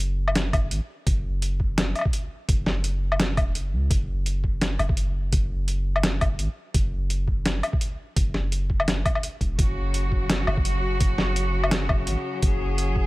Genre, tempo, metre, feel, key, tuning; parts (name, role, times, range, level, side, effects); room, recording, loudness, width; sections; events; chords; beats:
half-time drum and bass; 169 BPM; 4/4; swing 56% on 16ths, half-time; A4 = 440 Hz
long sustained 808-style bass; bass; 0.0-13.1 s; E1 to C#2; -25 LUFS; equal
boom bap sampler-style drum kit; drums; 0.0-12.9 s; hi-hat, snare drum, woodblock; -26 LUFS; equal
electronic kick drum; drums; 0.5-13.0 s; -24 LUFS; equal
bright studio cello section; sustained chords; 9.6-13.1 s; C#3 to G#4; -29 LUFS; equal; sidechain pumping
metallic inharmonic drone; texture; 11.5-13.1 s; F#4; -36 LUFS; left 4 dB; chorus, built-in reverb
little or no reverb; -22 LUFS; side -20 dB against mid
0.0-9.6 A section; 9.6-13.1 A section
drop 0.0-9.6, 9.6-13.1
0.0 F#5
0.00 0.35 0.71 | 1.06 1.42 1.77 2.13 | 2.49 2.84 3.20 3.55 | 3.91 4.26 4.62 4.97 | 5.33 5.68 6.04 6.39 | 6.75 7.10 7.46 7.81 | 8.17 8.52 8.88 9.23 | 9.59 9.94 10.30 10.65 | 11.01 11.36 11.72 12.07 | 12.43 12.78